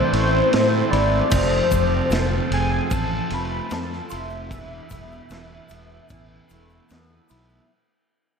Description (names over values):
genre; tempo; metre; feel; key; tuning
psychedelic rock; 75 BPM; 4/4; straight; unclear; A4 = 438 Hz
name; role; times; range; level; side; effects
hollow square lead; melody; 0.0-6.9 s; C5 to B5; -23 LUFS; left 2 dB; chorus, tape echo
combo organ; sustained chords; 0.0-7.7 s; E3 to A4; -30 LUFS; right 5 dB; none
electric guitar with an envelope filter; riff; 0.0-7.7 s; E2 to F4; -26 LUFS; equal; phaser, double-tracked left and right
fuzz fingered electric bass; bass; 0.1-7.6 s; E1 to A2; -25 LUFS; equal; overdrive
vintage drum kit; drums; 0.1-7.5 s; crash cymbal, kick drum, ride cymbal, snare drum; -27 LUFS; equal; none
egg shaker; percussion; 1.3-7.6 s; none; -40 LUFS; left 16 dB; none
room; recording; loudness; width
wet lush hall reverb, RT60 2.5 s; dreamy mix soaked in reverb; -18 LUFS; side -6 dB against mid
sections
0.0-7.7 A section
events
fade-out 0.0-7.7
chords
0.0 Am; 1.3 F; 4.5 Esus4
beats
0.52 | 1.31 2.11 2.91 3.71 | 4.50 5.30 6.09 6.89